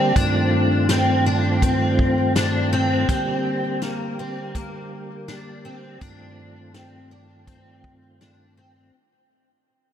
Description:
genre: dream pop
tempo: 82 BPM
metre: 4/4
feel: straight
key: unclear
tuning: A4 = 439 Hz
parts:
  - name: mellow tonewheel organ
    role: sustained chords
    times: 0.0-8.9 s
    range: G2 to G4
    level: -23 LUFS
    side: right 1 dB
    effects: chorus vibrato, slow rotary speaker
  - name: picked twelve-string acoustic guitar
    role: arpeggios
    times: 0.0-8.9 s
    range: Bb3 to D4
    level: -23 LUFS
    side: left 2 dB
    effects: ensemble chorus, analog delay, shimmer reverb
  - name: vintage drum kit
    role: drums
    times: 0.2-8.4 s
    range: hi-hat, kick drum, snare drum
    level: -25 LUFS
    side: equal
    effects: none
room: moderate plate reverb, RT60 3.8 s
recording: dreamy mix soaked in reverb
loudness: -18 LUFS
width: side -9 dB against mid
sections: 0.0-8.9 A section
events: fade-out 0.0-8.9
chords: 0.2 F7/G; 3.1 Gm; 6.0 F7/G

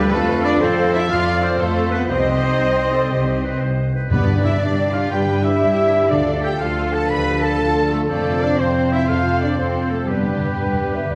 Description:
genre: cinematic, heroic adventure film score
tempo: 120 BPM (dotted quarters)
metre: 12/8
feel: straight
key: G mixolydian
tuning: A4 = 441 Hz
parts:
  - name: bright clarinet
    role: second line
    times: 0.0-11.2 s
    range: Eb4 to C5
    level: -32 LUFS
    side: equal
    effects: none
  - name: mellow hollow silver concert flute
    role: second line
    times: 0.0-11.2 s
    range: B4 to F5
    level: -32 LUFS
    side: equal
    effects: none
  - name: warm oboe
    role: second line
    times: 0.0-11.2 s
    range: G4 to B5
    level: -30 LUFS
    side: equal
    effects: none
  - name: warm symphonic violin section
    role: second line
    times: 0.0-11.2 s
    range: G4 to B5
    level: -34 LUFS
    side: equal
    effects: none
  - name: rich symphonic viola section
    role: accompaniment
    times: 0.0-11.2 s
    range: F4 to Eb5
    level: -30 LUFS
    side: equal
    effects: none
  - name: mellow French horn section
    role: sustained chords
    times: 0.0-11.2 s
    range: D3 to F4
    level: -28 LUFS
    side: equal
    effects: none
  - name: concert harp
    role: arpeggios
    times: 0.0-11.2 s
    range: F2 to A5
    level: -28 LUFS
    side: equal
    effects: none
  - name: clear symphonic double bass section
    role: bass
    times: 0.0-11.2 s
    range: C2 to G2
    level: -27 LUFS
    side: equal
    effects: none
  - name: rich symphonic cello section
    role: bass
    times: 0.0-11.2 s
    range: G3 to B4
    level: -26 LUFS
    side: equal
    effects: none
  - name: warm symphonic violin section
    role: melody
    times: 0.1-11.2 s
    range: G4 to B5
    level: -32 LUFS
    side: equal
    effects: none
  - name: mellow trumpet section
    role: stabs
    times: 0.1-11.2 s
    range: G4 to B5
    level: -28 LUFS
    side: equal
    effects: none
  - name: timpani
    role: percussion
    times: 4.1-6.6, 10.1-11.2 s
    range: G2 to D3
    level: -27 LUFS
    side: equal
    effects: none
room: wet recital hall reverb, RT60 1.6 s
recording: heard from further back in the room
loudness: -18 LUFS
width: mono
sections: 0.0-11.2 A section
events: timpani fill 10.1-11.2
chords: 0.1 F; 2.1 Cm; 4.1 G; 6.1 Dm; 8.1 F; 10.1 G

